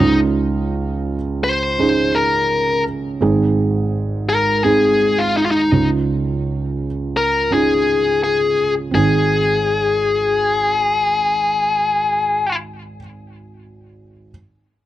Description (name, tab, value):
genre	pop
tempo	84 BPM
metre	4/4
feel	straight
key	Ab major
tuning	A4 = 440 Hz
part	bluesy overdriven lead guitar	melody	0.0-12.6 s	Eb4 to C5	-16 LUFS	left 3 dB	distortion
part	felt-muted upright piano	accompaniment	0.0-14.3 s	Ab1 to Ab4	-19 LUFS	right 3 dB	none
room	little or no reverb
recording	dry, close 1970s-style studio recording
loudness	-15 LUFS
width	side -13 dB against mid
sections	0.0-8.9 A section; 8.9-11.8 B section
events	none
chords	0.0 Dbadd9; 3.2 Ab; 5.7 Dbadd9; 8.9 Ab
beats	| 0.36 1.07 1.79 2.50 | 3.22 3.93 4.65 5.36 | 6.08 6.79 7.51 8.22 | 8.94 9.65 10.37 11.08